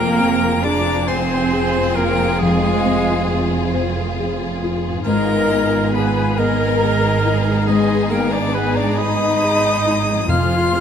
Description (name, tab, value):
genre	cinematic, emotional film score for orchestra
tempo	46 BPM (dotted quarters)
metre	6/8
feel	rubato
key	F dorian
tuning	A4 = 439 Hz
part	rich violin	melody	0.0-10.8 s	Ab5 to F6	-28 LUFS	left 7 dB	none
part	warm symphonic violin section	melody	0.0-10.8 s	Ab4	-29 LUFS	left 3 dB	none
part	concert flute	second line	0.0-10.8 s	Eb5 to C6	-26 LUFS	left 1 dB	none
part	mellow cor anglais	second line	0.0-10.8 s	Ab4 to F5	-26 LUFS	right 2 dB	none
part	warm clarinet	second line	0.0-10.8 s	Ab4 to F5	-26 LUFS	left 1 dB	none
part	warm symphonic violin section	second line	0.0-10.8 s	Cb4 to F4	-26 LUFS	left 1 dB	none
part	felt-muted upright piano	accompaniment	0.0-10.8 s	F2 to C5	-24 LUFS	left 4 dB	none
part	warm symphonic viola section	accompaniment	0.0-10.8 s	Ab3 to Bb4	-24 LUFS	right 3 dB	none
part	warm French horn section	sustained chords	0.0-10.8 s	Ab3 to Bb4	-24 LUFS	left 3 dB	none
part	concert harp	arpeggios	0.0-10.8 s	F2 to Ab4	-31 LUFS	left 10 dB	none
part	rich symphonic double bass section	bass	0.0-10.8 s	F1 to Ab1	-24 LUFS	right 5 dB	none
part	warm symphonic cello section	bass	0.0-10.8 s	F2 to Ab2	-24 LUFS	right 2 dB	none
part	timpani	percussion	0.0-1.0, 10.3-10.8 s	F2	-26 LUFS	equal	none
room	moderate scoring stage reverb, RT60 1.6 s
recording	none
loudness	-15 LUFS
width	side -8 dB against mid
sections	0.0-10.8 A section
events	none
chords	0.0 Fm; 5.1 Abmadd9; 10.3 Fm